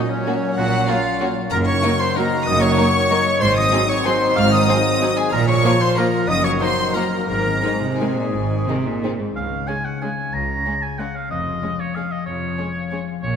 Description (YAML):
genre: classical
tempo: 164-204 BPM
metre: 3/4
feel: rubato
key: Db major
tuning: A4 = 441 Hz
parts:
  - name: warm chamber violin section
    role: melody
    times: 0.0-13.0 s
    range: Ab4 to F6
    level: -25 LUFS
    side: left 2 dB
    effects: none
  - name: clear clarinet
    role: second line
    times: 0.0-9.0 s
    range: C#4 to F5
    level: -25 LUFS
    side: equal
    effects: none
  - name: mellow hollow silver concert flute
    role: second line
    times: 0.0-9.0 s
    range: C#5 to F6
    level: -27 LUFS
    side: left 2 dB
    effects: none
  - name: warm oboe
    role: second line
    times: 0.0-13.4 s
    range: C#4 to Bb5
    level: -25 LUFS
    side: right 1 dB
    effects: none
  - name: bright trombone section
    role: sustained chords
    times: 0.0-9.2 s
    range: Bb2 to Ab3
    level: -28 LUFS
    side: right 4 dB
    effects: none
  - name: dark French horn section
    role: sustained chords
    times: 0.0-9.2 s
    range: A#3 to F4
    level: -26 LUFS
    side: left 4 dB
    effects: none
  - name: concert harp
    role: arpeggios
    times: 0.0-13.4 s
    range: Gb2 to Ab5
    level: -27 LUFS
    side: left 8 dB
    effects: none
  - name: rich chamber violin section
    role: second line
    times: 0.3-13.0 s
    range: Bb3 to Bb4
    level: -31 LUFS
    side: left 3 dB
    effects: none
  - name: rich chamber viola section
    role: accompaniment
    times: 0.3-13.0 s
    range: Eb3 to C4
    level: -29 LUFS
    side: right 1 dB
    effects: none
  - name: rich chamber double bass section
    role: bass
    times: 0.6-13.4 s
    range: F1 to Db2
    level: -26 LUFS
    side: right 5 dB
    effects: none
  - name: rich symphonic cello section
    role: bass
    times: 0.6-13.4 s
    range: Db2 to C3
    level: -26 LUFS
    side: right 3 dB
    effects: none
room: wet concert hall reverb, RT60 2.1 s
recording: none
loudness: -17 LUFS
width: side -7 dB against mid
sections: 0.0-9.4 A section; 9.4-13.4 B section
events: none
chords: 0.0 F#/A#; 1.5 Ebm7/Gb; 3.4 Ab7; 5.3 Bbm; 6.3 Ebm/Gb; 7.3 Ab; 9.4 Db; 11.3 Db/F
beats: 0.27 | 0.57 0.89 1.22 | 1.52 1.83 2.16 | 2.48 2.78 3.11 | 3.42 3.73 4.06 | 4.37 4.68 5.01 | 5.33 5.64 5.97 | 6.29 6.60 6.95 | 7.28 7.63 7.99 | 8.33 8.68 9.03 | 9.36 9.68 10.02 | 10.34 10.66 10.99 | 11.31 11.63 11.96 | 12.28 12.59 12.92 | 13.24